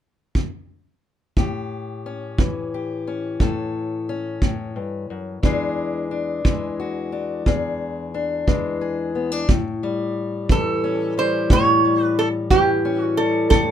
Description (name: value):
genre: acoustic country blues, solo or duo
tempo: 59 BPM (dotted quarters)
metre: 12/8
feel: straight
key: unclear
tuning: A4 = 443 Hz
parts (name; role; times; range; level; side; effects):
- kick drum; drums; 0.3-13.7 s; none; -19 LUFS; right 1 dB; none
- fingerpicked steel-string acoustic guitar; accompaniment; 1.4-13.7 s; E2 to A4; -23 LUFS; left 4 dB; none
- metal-body resonator slide guitar; melody; 10.5-13.7 s; G4 to C#5; -19 LUFS; right 5 dB; none
room: light reverb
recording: minimal, uncompressed stereo recording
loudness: -19 LUFS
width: side -10 dB against mid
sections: 0.0-1.4 A section; 1.4-9.5 B section; 9.5-13.7 C section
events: none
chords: 0.0 N.C.; 1.4 A7; 5.4 E7; 9.5 A7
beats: 0.35 | 1.37 2.39 3.40 4.42 | 5.43 6.45 7.46 8.47 | 9.48 10.49 11.50 12.51 | 13.51